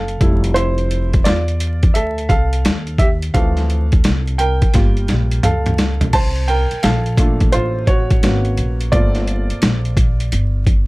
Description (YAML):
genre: hip hop, jazz-hop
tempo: 86 BPM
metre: 4/4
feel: swing 65% on 16ths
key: G dorian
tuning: A4 = 440 Hz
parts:
  - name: warm grand piano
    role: accompaniment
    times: 0.0-10.9 s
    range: E3 to A5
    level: -21 LUFS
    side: right 1 dB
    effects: plate reverb
  - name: upright bass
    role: bass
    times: 0.0-10.9 s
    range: F1 to E2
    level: -18 LUFS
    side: equal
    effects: none
  - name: boom bap sampler-style drum kit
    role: drums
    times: 0.1-10.9 s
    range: crash cymbal, hi-hat, kick drum, snare drum, toms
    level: -16 LUFS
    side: equal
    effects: overdrive
room: little or no reverb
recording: vinyl crackle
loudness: -14 LUFS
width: side -22 dB against mid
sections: 0.0-6.1 A section; 6.1-10.9 B section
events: grand piano solo 0.0-6.1, 6.1-10.9; drum fill 4.7-6.1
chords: 0.2 Fmaj7; 3.3 Dm7; 4.7 Gm9; 6.1 C13sus4; 8.2 Abm11; 8.9 Gm11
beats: | 0.55 1.25 1.95 2.65 | 3.35 4.04 4.74 5.44 | 6.14 6.83 7.53 8.23 | 8.93 9.62 10.32